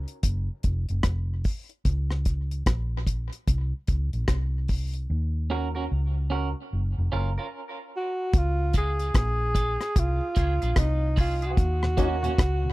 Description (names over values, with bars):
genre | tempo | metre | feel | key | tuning
dub reggae | 74 BPM | 4/4 | swing 63% on 16ths | Db major | A4 = 440 Hz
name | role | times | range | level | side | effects
vintage muted fingered electric bass | bass | 0.0-12.7 s | F1 to Eb2 | -26 LUFS | equal | none
deep reggae drum kit | drums | 0.1-12.6 s | hi-hat, kick drum, rim click | -24 LUFS | equal | none
clean electric guitar | accompaniment | 5.5-12.3 s | Bb3 to Bb4 | -34 LUFS | right 5 dB | high-pass filter, low-pass filter, tape echo
breathy alto saxophone | melody | 8.0-12.7 s | Eb4 to Ab4 | -28 LUFS | right 1 dB | tape echo
mellow tonewheel organ | accompaniment | 8.6-12.7 s | Eb2 to Gb4 | -32 LUFS | left 4 dB | chorus vibrato, high-pass filter
warm upright piano | stabs | 8.7-12.2 s | F4 to Eb5 | -39 LUFS | left 2 dB | high-pass filter, low-pass filter, tape echo
room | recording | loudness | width
little or no reverb | dry, close 1970s-style studio recording | -24 LUFS | side -19 dB against mid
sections
0.0-8.3 A section; 8.3-12.7 B section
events
break 0.0-8.3; filter sweep 0.0-11.6; part muted 5.1-8.3; stop 7.5-8.3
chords
0.2 N.C.; 1.9 Bbmadd9; 5.1 Ebm7; 6.7 Gbmaj7; 8.3 Dbmaj7; 11.6 Ebm7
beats
0.23 1.04 | 1.85 2.66 3.47 4.28 | 5.09 5.91 6.71 7.53 | 8.34 9.14 9.96 10.76 | 11.57 12.38